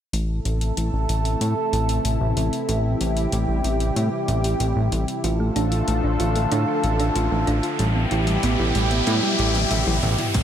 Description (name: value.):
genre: synthwave.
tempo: 94 BPM.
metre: 4/4.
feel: straight.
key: A minor.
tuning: A4 = 439 Hz.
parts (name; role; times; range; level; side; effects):
lush unison pad; sustained chords; 0.1-10.4 s; B2 to A4; -24 LUFS; equal; chorus, sidechain pumping.
fat analog bass; bass; 0.1-10.4 s; A1 to A2; -22 LUFS; equal; sidechain pumping.
80s electronic pad drums; drums; 0.1-10.4 s; crash cymbal, hi-hat, toms; -32 LUFS; left 2 dB; none.
thumb-piano-like synth pluck; arpeggios; 5.2-10.4 s; G3 to E5; -27 LUFS; right 3 dB; chorus, ping-pong delay.
riser; sound effects; 6.6-10.3 s; none; -27 LUFS; left 1 dB; none.
electronic kick drum; drums; 10.3-10.4 s; none; -22 LUFS; equal; none.
room: light reverb.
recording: bright 1980s-style digital production.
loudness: -19 LUFS.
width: side -10 dB against mid.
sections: 0.1-10.3 A section.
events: filter sweep on analog synth bass 0.1-10.3; filter sweep on analog synth pad 0.1-10.3; riser 6.6-10.3; drum fill 9.1-10.3.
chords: 0.1 Am; 2.7 C/A; 5.2 Dm/A; 7.8 Em/A.